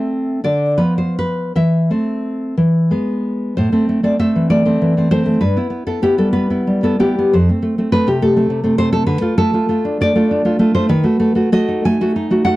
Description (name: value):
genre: romantic piece for solo classical guitar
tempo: 51-72 BPM (dotted quarters)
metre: 6/8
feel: rubato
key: A minor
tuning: A4 = 440 Hz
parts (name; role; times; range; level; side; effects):
- nylon-string guitar; solo; 0.0-12.6 s; F2 to G#5; -14 LUFS; equal; none
room: light reverb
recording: dry, close 1970s-style studio recording, faint mains hum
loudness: -14 LUFS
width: side -17 dB against mid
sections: 0.0-3.6 A section; 3.6-12.6 B section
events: none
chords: 0.4 Bdim/D; 1.6 Am/E; 2.6 E; 3.6 Am; 5.4 Em/G; 7.3 F (rootless); 9.1 Dm; 10.9 B7/D#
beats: 0.45 | 1.56 2.58 | 3.59 4.52 | 5.41 6.33 | 7.33 8.22 | 9.07 10.02 | 10.90 11.86